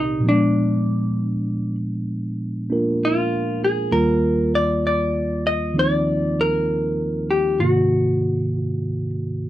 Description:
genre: jazz ballad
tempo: 65 BPM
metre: 4/4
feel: swing 66% on 8ths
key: unclear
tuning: A4 = 438 Hz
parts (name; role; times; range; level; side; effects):
- vintage hollow-body jazz guitar; melody; 0.0-9.1 s; D4 to Eb5; -22 LUFS; left 1 dB; none
- mellow tine electric piano; accompaniment; 0.0-9.5 s; C2 to D5; -20 LUFS; right 1 dB; none
room: light reverb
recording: dry, close 1970s-style studio recording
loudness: -18 LUFS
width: side -14 dB against mid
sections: 0.0-9.5 A section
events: none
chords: 0.2 Bb7b9; 3.9 Ebadd9; 7.6 Ab9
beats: | 0.25 1.16 2.08 3.00 | 3.91 4.83 5.75 6.67 | 7.59 8.52 9.45

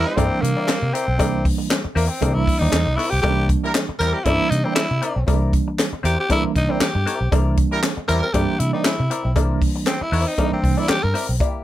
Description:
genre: funk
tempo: 118 BPM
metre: 4/4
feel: swing 56% on 16ths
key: C mixolydian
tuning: A4 = 439 Hz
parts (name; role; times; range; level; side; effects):
- growling tenor saxophone; melody; 0.0-11.3 s; Bb3 to Bb4; -23 LUFS; equal; none
- warm horn section; second line; 0.0-0.3, 3.6-4.2, 7.7-8.2 s; G3 to Bb4; -25 LUFS; right 2 dB; none
- hollow-body jazz guitar; accompaniment; 0.0-11.6 s; Bb3 to D5; -27 LUFS; left 5 dB; wah
- vintage muted fingered electric bass; bass; 0.0-11.4 s; B1 to C3; -22 LUFS; equal; none
- mellow tine electric piano; stabs; 0.2-11.0 s; D3 to D4; -24 LUFS; right 4 dB; medium stereo tremolo
- compact cocktail drum kit; drums; 0.2-11.5 s; handclaps, hi-hat, kick drum, snare drum; -22 LUFS; equal; none
- cowbell; percussion; 0.2-11.0 s; none; -30 LUFS; left 4 dB; none
room: little or no reverb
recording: none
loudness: -17 LUFS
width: side -14 dB against mid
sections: 0.0-11.4 A section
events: tenor saxophone solo 0.0-11.4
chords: 0.0 C9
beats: 0.17 0.69 | 1.20 1.71 2.22 2.73 | 3.24 3.75 4.26 4.77 | 5.28 5.79 6.30 6.81 | 7.32 7.83 8.34 8.85 | 9.36 9.87 10.38 10.89 | 11.40

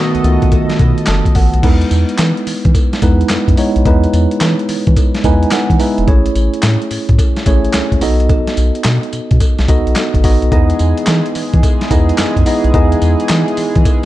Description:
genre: R&B, new jack swing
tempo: 108 BPM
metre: 4/4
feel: swing 65% on 16ths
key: E major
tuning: A4 = 440 Hz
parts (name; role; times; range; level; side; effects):
- mellow tine electric piano; accompaniment; 0.0-14.1 s; D#3 to A5; -16 LUFS; right 1 dB; medium stereo tremolo
- chorused pulse-width pad; sustained chords; 0.0-1.6, 10.5-14.1 s; E3 to D#5; -22 LUFS; equal; none
- round analog bass; bass; 0.1-13.8 s; E1 to E3; -14 LUFS; equal; none
- boom bap sampler-style drum kit; drums; 0.1-14.0 s; crash cymbal, handclaps, hi-hat, kick drum, snare drum, tambourine; -14 LUFS; equal; none
- cowbell; percussion; 0.5-14.0 s; none; -31 LUFS; left 6 dB; none
room: digital ambience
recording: dark, warm production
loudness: -10 LUFS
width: side -15 dB against mid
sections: 0.0-1.6 A section; 1.6-14.1 B section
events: tine electric piano fill 0.8-1.6, 5.0-6.1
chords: 0.0 B7; 1.6 Emaj7; 6.1 Amaj7; 8.0 B7; 10.5 Emaj7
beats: 0.52 1.07 | 1.63 2.19 2.74 3.30 | 3.85 4.41 4.96 5.52 | 6.08 6.63 7.19 7.74 | 8.30 8.85 9.41 9.96 | 10.52 11.07 11.63 12.19 | 12.74 13.30 13.85

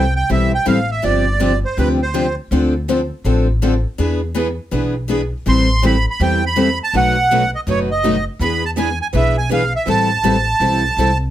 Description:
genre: acoustic string swing (jazz manouche)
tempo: 163 BPM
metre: 4/4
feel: swing 63% on 8ths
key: A minor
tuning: A4 = 440 Hz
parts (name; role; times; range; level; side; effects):
- accordion; melody; 0.0-2.4, 5.5-11.2 s; B4 to C6; -18 LUFS; right 3 dB; light tremolo tuning
- picked steel-string acoustic guitar; accompaniment; 0.0-11.1 s; B2 to A4; -20 LUFS; left 5 dB; none
- picked steel-string acoustic guitar; accompaniment; 0.0-11.1 s; B2 to B4; -23 LUFS; right 5 dB; none
- upright bass; bass; 0.0-11.3 s; F#1 to E2; -19 LUFS; equal; none
room: moderate studio ambience, RT60 0.5 s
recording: none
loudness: -14 LUFS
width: side -12 dB against mid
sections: 0.0-11.3 A section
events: none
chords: 0.0 Am7; 1.0 G7sus4; 2.5 Dm7; 4.0 E7; 5.5 Am7; 6.9 B7; 8.4 E7; 9.9 Am7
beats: 0.29 0.66 | 1.03 1.40 1.77 2.13 | 2.50 2.87 3.24 3.61 | 3.98 4.35 4.72 5.08 | 5.45 5.82 6.19 6.56 | 6.93 7.29 7.66 8.03 | 8.40 8.77 9.13 9.50 | 9.87 10.24 10.61 10.97

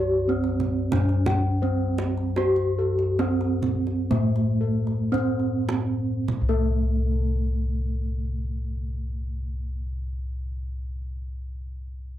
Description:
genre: Javanese gamelan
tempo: 48-100 BPM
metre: 4/4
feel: straight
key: unclear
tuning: A4 = 438 Hz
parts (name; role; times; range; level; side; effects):
- gamelan-type bronze metallophone; melody; 0.0-9.8 s; A3+20c to G4-40c; -26 LUFS; right 2 dB; none
- gamelan-type bossed gongs; arpeggios; 0.0-9.8 s; A4+20c to G5-40c; -33 LUFS; left 8 dB; none
- gamelan-type bossed gongs; bass; 0.0-9.7 s; C2 to G4-40c; -26 LUFS; left 1 dB; none
- kendang; percussion; 0.4-6.9 s; none; -32 LUFS; right 4 dB; none
room: light reverb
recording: dry, close 1970s-style studio recording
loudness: -23 LUFS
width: side -12 dB against mid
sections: 0.0-6.3 A section; 6.3-11.3 B section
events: slowing down 0.0-6.3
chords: none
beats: 0.28 0.92 1.62 | 2.37 3.20 4.11 5.14 | 6.29 7.54 8.78

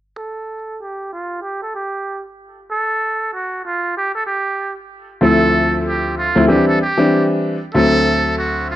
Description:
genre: hip hop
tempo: 95 BPM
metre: 4/4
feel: swing 60% on 16ths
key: D minor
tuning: A4 = 440 Hz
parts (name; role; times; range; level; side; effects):
- trumpet with metal mute; melody; 0.2-8.8 s; F4 to A4; -20 LUFS; right 2 dB; low-pass filter, plate reverb
- warm grand piano; accompaniment; 5.2-8.8 s; D2 to E4; -14 LUFS; left 1 dB; low-pass filter
room: moderate studio reverb, RT60 0.6 s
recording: none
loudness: -15 LUFS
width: side -13 dB against mid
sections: 0.2-8.8 A section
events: filter sweep 0.2-8.8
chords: 0.2 N.C.; 5.2 Dm7; 6.5 Cadd9; 7.8 D7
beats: | 0.17 0.80 1.43 2.07 | 2.70 3.33 3.96 4.59 | 5.22 5.86 6.49 7.12 | 7.75 8.38

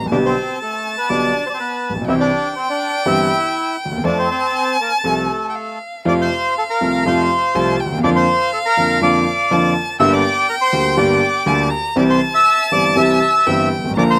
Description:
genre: tango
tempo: 122 BPM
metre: 4/4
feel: rubato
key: F major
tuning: A4 = 435 Hz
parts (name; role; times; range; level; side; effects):
- warm violin; second line; 0.0-14.2 s; F5 to Bb5; -24 LUFS; equal; none
- warm concert grand piano; accompaniment; 0.0-14.2 s; G1 to A4; -20 LUFS; equal; slapback echo
- bandoneon; melody; 0.1-14.2 s; A3 to E6; -20 LUFS; equal; none
room: little or no reverb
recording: recorded outdoors, with no room sound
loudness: -17 LUFS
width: mono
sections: 0.0-6.1 A section; 6.1-14.2 A section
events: none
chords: 0.1 G/B; 2.1 C; 4.0 F; 8.0 Bb/F; 10.0 Gm; 12.0 C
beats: | 0.11 0.60 1.09 1.58 | 2.07 2.56 3.06 3.55 | 4.04 4.54 5.04 5.55 | 6.06 6.56 7.06 7.55 | 8.04 8.54 9.03 9.52 | 10.01 10.50 10.99 11.48 | 11.97 12.47 12.97 13.47 | 13.97

